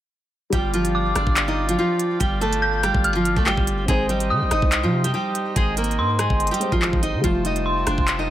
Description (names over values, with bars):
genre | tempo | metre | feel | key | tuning
hip hop, drill | 143 BPM | 4/4 | half-time | unclear | A4 = 440 Hz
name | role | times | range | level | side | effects
nylon-string guitar | melody | 0.5-8.3 s | F3 to Eb5 | -23 LUFS | right 1 dB | digital delay
dark baby grand piano | accompaniment | 0.5-8.3 s | G3 to C5 | -30 LUFS | left 1 dB | none
hand-pumped harmonium | sustained chords | 0.5-8.3 s | Eb4 to A5 | -30 LUFS | right 2 dB | none
long sustained 808-style bass | bass | 0.5-8.3 s | F1 to Eb3 | -26 LUFS | equal | none
drill drum kit | drums | 0.5-8.2 s | handclaps, hi-hat, kick drum, rim click | -22 LUFS | equal | none
dark detuned synth bell | second line | 0.9-8.3 s | C6 to G6 | -26 LUFS | left 1 dB | chorus, tremolo, digital delay
room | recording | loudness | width
light reverb | none | -18 LUFS | side -12 dB against mid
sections
0.5-8.3 A section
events
none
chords
0.5 G5; 3.9 Abmaj7; 7.2 Fadd9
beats
| 0.53 0.94 1.36 1.78 | 2.20 2.62 3.04 3.46 | 3.88 4.30 4.72 5.14 | 5.56 5.98 6.40 6.82 | 7.24 7.66 8.08